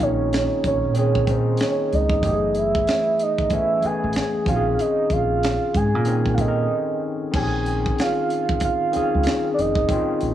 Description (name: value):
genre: R&B, neo-soul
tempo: 94 BPM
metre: 4/4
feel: swing 61% on 16ths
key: Bb minor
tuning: A4 = 440 Hz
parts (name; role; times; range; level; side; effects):
- soft octave-layered synth lead; melody; 0.0-10.3 s; C5 to Ab5; -23 LUFS; right 4 dB; chorus, tremolo, tape echo
- barky tine electric piano; accompaniment; 0.0-10.3 s; Eb3 to Bb4; -24 LUFS; left 4 dB; overdrive, cassette tape
- deep dub fingered electric bass; bass; 0.0-10.3 s; F1 to Bb2; -24 LUFS; right 2 dB; tube saturation
- tight funk drum kit; drums; 0.0-10.3 s; crash cymbal, finger snaps, hi-hat, kick drum, snare drum; -26 LUFS; right 1 dB; cassette tape
room: light reverb, studio reverb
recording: home recording on cassette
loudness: -19 LUFS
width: side -11 dB against mid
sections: 0.0-7.3 A section; 7.3-10.3 B section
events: break 6.7-7.3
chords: 0.0 Bbm11; 2.2 Gbm11; 4.5 Bbm11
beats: 0.32 0.95 1.59 | 2.23 2.87 3.51 4.15 | 4.78 5.42 6.06 6.70 | 7.34 7.97 8.61 9.25 | 9.89